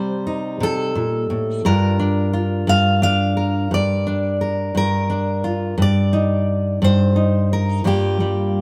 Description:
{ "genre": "folk, solo fingerstyle acoustic guitar", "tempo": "58 BPM (dotted quarters)", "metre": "6/8", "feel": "straight", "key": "G minor", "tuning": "A4 = 439 Hz", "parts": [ { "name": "fingerpicked steel-string acoustic guitar", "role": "solo", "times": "0.0-8.6 s", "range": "G2 to F5", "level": "-19 LUFS", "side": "equal", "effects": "none" } ], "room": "moderate stone room reverb, RT60 1.0 s", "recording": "band playing live in one room", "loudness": "-19 LUFS", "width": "mono", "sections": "0.0-8.6 A section", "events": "none", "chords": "0.0 Cm; 1.6 Gm7; 5.8 Eb6/G; 7.9 Gm7", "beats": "0.61 | 1.64 2.68 | 3.71 4.75 | 5.78 6.82 | 7.86" }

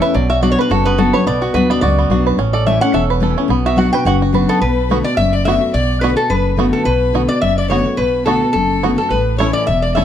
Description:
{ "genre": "bluegrass", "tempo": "214 BPM", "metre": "4/4", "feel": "swing 55% on 8ths", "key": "B minor", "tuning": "A4 = 441 Hz", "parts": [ { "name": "lap resonator guitar", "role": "melody", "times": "0.0-10.0 s", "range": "F#4 to G5", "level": "-18 LUFS", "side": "left 1 dB", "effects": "plate reverb" }, { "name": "picked steel-string acoustic guitar", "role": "accompaniment", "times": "0.0-10.0 s", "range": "E2 to F#4", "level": "-17 LUFS", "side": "left 3 dB", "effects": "none" }, { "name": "bluegrass banjo", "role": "arpeggios", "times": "0.0-10.0 s", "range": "F#3 to B4", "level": "-20 LUFS", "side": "right 8 dB", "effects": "none" }, { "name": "upright bass", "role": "bass", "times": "0.2-10.0 s", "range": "E1 to D2", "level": "-19 LUFS", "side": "right 1 dB", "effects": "none" }, { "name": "clear fiddle", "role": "second line", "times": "4.5-10.0 s", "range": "A4 to E5", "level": "-23 LUFS", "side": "left 7 dB", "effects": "none" } ], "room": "light reverb", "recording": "dark, warm production", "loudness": "-12 LUFS", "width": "side -10 dB against mid", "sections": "0.0-4.6 A section; 4.6-10.0 B section", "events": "resonator guitar played with a steel bar solo 0.0-4.6", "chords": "0.1 Bm; 2.4 A; 3.5 Bm; 4.6 Bm7; 9.1 A", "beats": "| 0.15 0.43 0.71 0.99 | 1.27 1.54 1.82 2.10 | 2.38 2.66 2.94 3.22 | 3.50 3.78 4.06 4.34 | 4.62 4.90 5.18 5.46 | 5.74 6.02 6.30 6.58 | 6.87 7.15 7.43 7.71 | 7.99 8.27 8.55 8.83 | 9.12 9.40 9.68 9.96" }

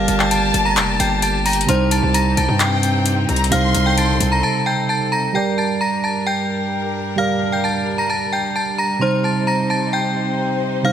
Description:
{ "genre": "hip hop, trap", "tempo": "131 BPM", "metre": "4/4", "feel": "half-time", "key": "G minor", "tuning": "A4 = 442 Hz", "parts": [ { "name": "metallic FM bell", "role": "melody", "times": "0.0-10.9 s", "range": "C5 to Bb6", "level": "-20 LUFS", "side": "left 1 dB", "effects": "chorus" }, { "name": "dark studio violin section", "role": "second line", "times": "0.0-4.4 s", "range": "G5 to C6", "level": "-24 LUFS", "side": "left 2 dB", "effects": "tape echo" }, { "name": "tine electric piano", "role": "accompaniment", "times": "0.0-10.9 s", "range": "C3 to D5", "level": "-21 LUFS", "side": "right 5 dB", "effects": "none" }, { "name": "clear studio string section", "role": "sustained chords", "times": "0.0-10.9 s", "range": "G2 to C5", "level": "-26 LUFS", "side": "left 3 dB", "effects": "none" }, { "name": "distorted 808-style bass", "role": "bass", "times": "0.0-4.4 s", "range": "F1 to G2", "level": "-21 LUFS", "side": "left 2 dB", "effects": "distortion" }, { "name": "trap drum kit", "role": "drums", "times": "0.1-4.3 s", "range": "handclaps, hi-hat", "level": "-21 LUFS", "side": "left 4 dB", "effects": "none" } ], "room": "light reverb, digital ambience", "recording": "none", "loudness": "-16 LUFS", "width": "side -9 dB against mid", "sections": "0.0-5.3 A section; 5.3-10.9 B section", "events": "break 4.4-5.3", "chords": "0.0 Gm; 1.7 Cm; 5.3 Gm; 9.0 Cm", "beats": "0.31 0.77 1.23 | 1.69 2.14 2.60 3.06 | 3.52 3.98 4.43 4.89 | 5.35 5.81 6.26 6.72 | 7.18 7.64 8.10 8.55 | 9.01 9.47 9.93 10.39 | 10.85" }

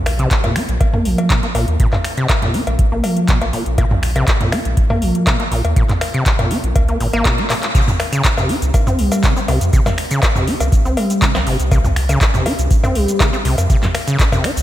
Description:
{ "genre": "acid house", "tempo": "121 BPM", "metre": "4/4", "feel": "straight", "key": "C phrygian", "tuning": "A4 = 444 Hz", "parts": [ { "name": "warm sub bass", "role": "bass", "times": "0.0-14.6 s", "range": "G1 to Bb2", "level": "-18 LUFS", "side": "equal", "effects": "sidechain pumping" }, { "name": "electro analog drum machine", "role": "drums", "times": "0.1-14.6 s", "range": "cowbell, finger snaps, handclaps, hi-hat, shaker, snare drum, toms", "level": "-19 LUFS", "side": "equal", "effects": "none" }, { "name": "deep acid bass", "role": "riff", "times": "0.2-14.5 s", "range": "Ab2 to Eb4", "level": "-19 LUFS", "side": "equal", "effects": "tube saturation, sidechain pumping, ping-pong delay" }, { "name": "electronic kick drum", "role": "drums", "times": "0.3-14.3 s", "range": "none", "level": "-16 LUFS", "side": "equal", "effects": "none" } ], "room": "moderate lush hall reverb, RT60 1.7 s", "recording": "bright 1980s-style digital production", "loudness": "-13 LUFS", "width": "side -13 dB against mid", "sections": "0.0-7.7 A section; 7.7-14.6 B section", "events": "drum fill 7.5; band accent 7.6; drop 7.7-14.6", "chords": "0.0 N.C.; 7.7 C5", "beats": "0.31 0.81 1.30 | 1.80 2.29 2.79 3.29 | 3.78 4.28 4.77 5.27 | 5.76 6.26 6.76 7.25 | 7.75 8.24 8.74 9.24 | 9.73 10.23 10.72 11.22 | 11.71 12.21 12.71 13.20 | 13.70 14.19" }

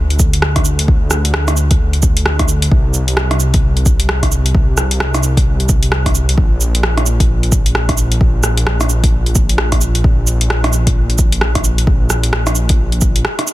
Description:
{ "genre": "future garage", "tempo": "131 BPM", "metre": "4/4", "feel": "swing 61% on 16ths", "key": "unclear", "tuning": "A4 = 435 Hz", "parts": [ { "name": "dark detuned saw bass", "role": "bass", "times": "0.0-13.2 s", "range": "Bb1 to D2", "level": "-15 LUFS", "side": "equal", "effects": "sidechain pumping" }, { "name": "deep house drum kit", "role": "drums", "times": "0.1-13.5 s", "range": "cabasa, hi-hat, rim click", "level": "-18 LUFS", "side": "equal", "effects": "soft clipping on snare" }, { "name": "electronic kick drum", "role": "drums", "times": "0.2-13.1 s", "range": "none", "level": "-14 LUFS", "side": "equal", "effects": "none" } ], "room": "little or no reverb", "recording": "dense, heavily limited modern master", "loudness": "-11 LUFS", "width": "side -16 dB against mid", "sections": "0.0-13.5 A section", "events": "break 13.2", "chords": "none", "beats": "0.42 | 0.88 1.34 1.80 2.25 | 2.71 3.17 3.63 4.09 | 4.54 5.00 5.46 5.92 | 6.38 6.83 7.29 7.75 | 8.21 8.67 9.12 9.58 | 10.04 10.50 10.96 11.41 | 11.87 12.33 12.79 13.25" }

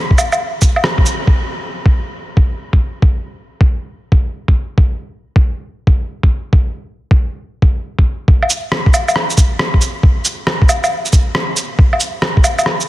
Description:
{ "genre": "future garage", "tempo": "137 BPM", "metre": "4/4", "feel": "swing 66% on 16ths", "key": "none", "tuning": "none", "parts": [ { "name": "electronic kick drum", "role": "drums", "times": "0.1-12.4 s", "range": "none", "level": "-11 LUFS", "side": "equal", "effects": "none" }, { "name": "electronic shaker, woodblock, rim click and cabasa", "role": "drums", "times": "0.2-1.2, 8.4-12.9 s", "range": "none", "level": "-16 LUFS", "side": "equal", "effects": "soft clipping on snare" } ], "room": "little or no reverb", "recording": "dense, heavily limited modern master", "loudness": "-12 LUFS", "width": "side -16 dB against mid", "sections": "0.0-1.3 A section; 1.3-8.3 B section; 8.3-12.9 C section", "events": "band accent 0.8", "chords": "none", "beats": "0.40 0.84 | 1.27 1.71 2.15 2.59 | 3.03 3.46 3.90 4.34 | 4.78 5.22 5.66 6.09 | 6.53 6.97 7.41 7.84 | 8.28 8.72 9.16 9.60 | 10.03 10.47 10.91 11.35 | 11.79 12.22 12.66" }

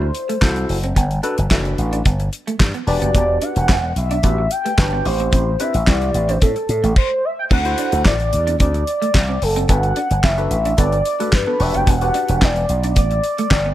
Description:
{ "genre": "early-eighties boogie funk", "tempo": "110 BPM", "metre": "4/4", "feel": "straight", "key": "unclear", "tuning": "A4 = 440 Hz", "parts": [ { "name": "warm velvety synth lead", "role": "melody", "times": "0.0-13.7 s", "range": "A4 to G5", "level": "-21 LUFS", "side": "equal", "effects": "chorus" }, { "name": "barky tine electric piano", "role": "accompaniment", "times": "0.0-12.5 s", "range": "C4 to C5", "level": "-25 LUFS", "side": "left 1 dB", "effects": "overdrive, phaser" }, { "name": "electric guitar at the edge of break-up", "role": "riff", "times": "0.0-13.7 s", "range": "A3 to E4", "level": "-28 LUFS", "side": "right 4 dB", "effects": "analog chorus" }, { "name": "slap bass with an envelope filter", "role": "bass", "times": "0.0-13.7 s", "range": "E1 to A2", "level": "-20 LUFS", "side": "equal", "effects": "none" }, { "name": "damped 70s drum kit", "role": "drums", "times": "0.1-13.6 s", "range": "crash cymbal, handclaps, hi-hat, kick drum, snare drum", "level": "-18 LUFS", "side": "equal", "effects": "none" } ], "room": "light reverb, small room ambience", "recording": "none", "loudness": "-15 LUFS", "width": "side -13 dB against mid", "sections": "0.0-7.5 A section; 7.5-13.7 B section", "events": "none", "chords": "0.0 D7 (rootless); 1.0 Gmaj7; 2.9 Em9; 5.1 Am7; 7.5 D7; 9.7 Gmaj7; 11.6 Em9", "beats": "0.42 | 0.96 1.51 2.05 2.60 | 3.15 3.69 4.24 4.78 | 5.33 5.87 6.42 6.96 | 7.51 8.05 8.60 9.14 | 9.69 10.23 10.78 11.33 | 11.87 12.42 12.96 13.51" }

